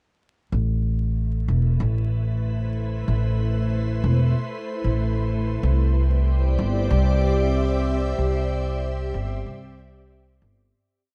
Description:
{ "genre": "ambient dub", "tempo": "94 BPM", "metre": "4/4", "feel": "swing 54% on 16ths", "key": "A minor", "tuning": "A4 = 440 Hz", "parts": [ { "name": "soft additive organ-like pad", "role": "sustained chords", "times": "1.6-10.7 s", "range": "A3 to E5", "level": "-30 LUFS", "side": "equal", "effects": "ensemble chorus, built-in reverb" }, { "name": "upright bass", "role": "bass", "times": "0.5-10.7 s", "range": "E1 to C2", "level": "-24 LUFS", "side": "equal", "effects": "tube saturation" } ], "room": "small room ambience", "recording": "vinyl crackle", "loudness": "-23 LUFS", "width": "mono", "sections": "0.5-10.7 groove", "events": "fade-in on ambient pad 0.5-10.7; fade-out 7.3-10.7", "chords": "0.5 Am; 5.6 Cmaj7" }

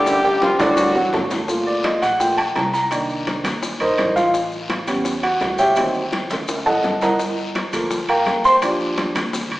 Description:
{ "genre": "latin, salsa", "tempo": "168 BPM", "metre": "4/4", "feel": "straight", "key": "G minor", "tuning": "A4 = 439 Hz", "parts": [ { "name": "warm horn section", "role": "melody", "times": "0.0-1.3 s", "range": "F3 to G4", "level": "-20 LUFS", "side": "equal", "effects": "none" }, { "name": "dark grand piano", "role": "accompaniment", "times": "0.0-9.1 s", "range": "D3 to C6", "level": "-18 LUFS", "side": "equal", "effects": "none" }, { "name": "upright bass", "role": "bass", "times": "0.0-9.6 s", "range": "G1 to E2", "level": "-35 LUFS", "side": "equal", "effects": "none" }, { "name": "bongos", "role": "percussion", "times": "0.1-9.6 s", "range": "none", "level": "-31 LUFS", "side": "left 2 dB", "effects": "none" }, { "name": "congas", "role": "percussion", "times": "0.1-9.6 s", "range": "none", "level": "-30 LUFS", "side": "equal", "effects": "none" }, { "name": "guiro", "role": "percussion", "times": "0.1-9.6 s", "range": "none", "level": "-32 LUFS", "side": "left 2 dB", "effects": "none" }, { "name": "maracas", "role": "percussion", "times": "0.1-9.6 s", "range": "none", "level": "-35 LUFS", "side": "left 2 dB", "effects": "none" }, { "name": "timbales", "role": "percussion", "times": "0.1-9.6 s", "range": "none", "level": "-27 LUFS", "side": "right 1 dB", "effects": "none" } ], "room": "wet recital hall reverb, RT60 1.5 s", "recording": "recorded in a church or concert hall, small speaker sound", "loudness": "-17 LUFS", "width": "side -17 dB against mid", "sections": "0.0-1.5 A section; 1.5-9.6 B section", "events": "drum fill 0.1-1.5, 6.3-7.2; grand piano solo 1.5-9.6", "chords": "0.1 Dsus4; 0.8 D; 1.5 Gm9; 2.9 Cm7; 4.3 A7; 5.8 D7b9b13; 7.2 Gm7; 8.6 Ebmaj7" }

